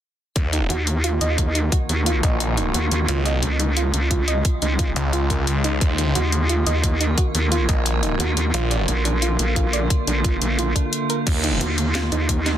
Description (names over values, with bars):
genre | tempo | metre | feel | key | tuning
dark technical drum and bass | 176 BPM | 4/4 | straight | Eb minor | A4 = 438 Hz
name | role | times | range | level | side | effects
metallic inharmonic drone | sustained chords | 1.3-12.6 s | Db3 to Gb4 | -27 LUFS | equal | chorus, built-in reverb, sidechain pumping
snarling distorted saw bass | bass | 0.4-8.9, 11.3-11.6 s | Bb1 to Eb2 | -22 LUFS | equal | distortion, sidechain pumping
drum and bass drum kit | drums | 0.4-12.5 s | crash cymbal, hi-hat, rim click, snare drum | -25 LUFS | left 2 dB | none
electronic kick drum | drums | 0.4-12.4 s | none | -21 LUFS | equal | none
soft round pluck | arpeggios | 0.5-12.6 s | D4 to Eb5 | -27 LUFS | right 4 dB | wide subtle chorus, sidechain pumping, digital delay
vowel-sweep wobble bass | bass | 0.7-12.6 s | Bb1 to Eb2 | -21 LUFS | equal | chorus
room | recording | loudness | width
light reverb | dense, heavily limited modern master | -18 LUFS | side -10 dB against mid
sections
0.4-12.6 A section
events
none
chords
0.4 Ebm; 3.1 Db; 5.8 Ebm; 8.5 Bb; 11.3 Ebm